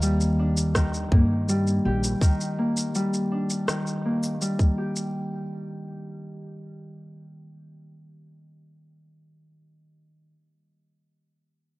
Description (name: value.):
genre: folktronica.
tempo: 82 BPM.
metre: 4/4.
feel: straight.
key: Eb major.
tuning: A4 = 440 Hz.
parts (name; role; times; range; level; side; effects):
Celtic harp; arpeggios; 0.0-10.5 s; Eb3 to G4; -26 LUFS; equal; low-pass filter, cassette tape, tape echo.
upright bass; bass; 0.0-2.1 s; Bb1 to G2; -24 LUFS; equal; none.
electronic shaker and rim click; drums; 0.0-5.1 s; none; -30 LUFS; equal; none.
electronic kick drum; drums; 0.8-4.7 s; none; -19 LUFS; equal; none.
room: small room ambience.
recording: home recording on cassette.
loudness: -22 LUFS.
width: side -21 dB against mid.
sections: 0.0-5.1 A section.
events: filter sweep on harp 0.0-5.1.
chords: 0.0 Ebmaj7.